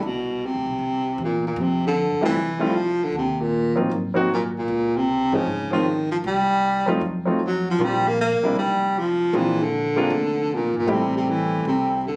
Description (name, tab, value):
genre	jazz, small-group swing and bop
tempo	155 BPM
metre	4/4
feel	swing 64% on 8ths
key	F major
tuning	A4 = 440 Hz
part	upright bass	bass	0.0-12.2 s	F1 to Ab2	-33 LUFS	equal	none
part	breathy baritone saxophone	melody	0.1-12.2 s	Bb2 to Bb3	-24 LUFS	equal	none
part	warm grand piano	accompaniment	2.2-12.0 s	F3 to G4	-25 LUFS	equal	none
room	little or no reverb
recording	recorded on a phone in the room, club reverb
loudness	-22 LUFS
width	mono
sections	0.0-1.6 A section; 1.6-12.2 B section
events	none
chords	0.0 Csus2; 0.8 C; 1.6 Fmaj9; 3.1 Ebmadd9; 3.9 Ab9; 4.7 Dbmaj9; 6.2 Cm; 7.0 F7b9; 7.8 Bb6; 9.3 Bb9; 10.9 Am7